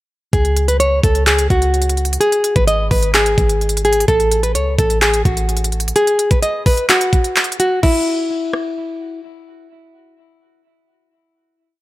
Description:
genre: hip hop, trap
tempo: 128 BPM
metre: 4/4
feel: half-time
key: C# minor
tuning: A4 = 439 Hz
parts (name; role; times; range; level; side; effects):
- nylon-string guitar; melody; 0.3-9.2 s; E4 to D#5; -16 LUFS; equal; low-pass filter, ping-pong delay
- warm 808-style bass; bass; 0.3-5.9 s; G#1 to C#2; -18 LUFS; equal; none
- trap drum kit; drums; 0.3-8.6 s; crash cymbal, handclaps, hi-hat, kick drum, rim click; -16 LUFS; equal; none
room: light reverb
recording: none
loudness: -13 LUFS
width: side -16 dB against mid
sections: 0.3-7.8 verse; 7.8-11.6 final note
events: none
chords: 0.3 C#sus4; 2.2 N.C.

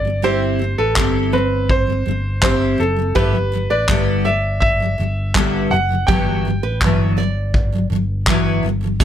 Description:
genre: acoustic pop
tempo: 82 BPM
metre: 4/4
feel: straight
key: unclear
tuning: A4 = 440 Hz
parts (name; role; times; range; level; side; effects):
- bright upright piano; melody; 0.0-6.8 s; A4 to G5; -20 LUFS; equal; none
- picked steel-string acoustic guitar; accompaniment; 0.0-9.0 s; G2 to B4; -20 LUFS; equal; double-tracked left and right
- fingered electric bass; bass; 0.0-9.0 s; F#1 to A1; -21 LUFS; equal; none
- nylon-string guitar; arpeggios; 0.2-7.9 s; C4 to D5; -26 LUFS; right 9 dB; none
- vintage brush drum kit; drums; 1.0-9.0 s; crash cymbal, handclaps, kick drum; -19 LUFS; equal; none
room: light reverb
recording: none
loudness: -15 LUFS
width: side -10 dB against mid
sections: 0.0-9.0 A section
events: none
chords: 0.0 C/G; 3.2 G6; 6.1 Emadd9/G

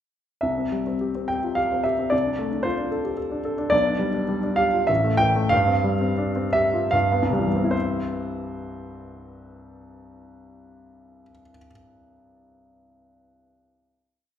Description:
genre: classical, romantic character piece for solo piano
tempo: 71-115 BPM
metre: 3/4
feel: rubato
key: C major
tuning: A4 = 440 Hz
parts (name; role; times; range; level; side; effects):
- warm grand piano; solo; 0.4-14.4 s; A1 to G5; -21 LUFS; equal; none
room: wet recital hall reverb, RT60 1.3 s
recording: recorded in a church or concert hall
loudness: -20 LUFS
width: side -10 dB against mid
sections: 0.4-7.7 A section; 7.7-12.4 final chord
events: slowing down 2.9-7.7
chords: 0.4 C; 2.1 Dm7/C; 3.7 G/B; 4.9 A5; 5.5 G7sus4; 6.9 G7; 7.7 C

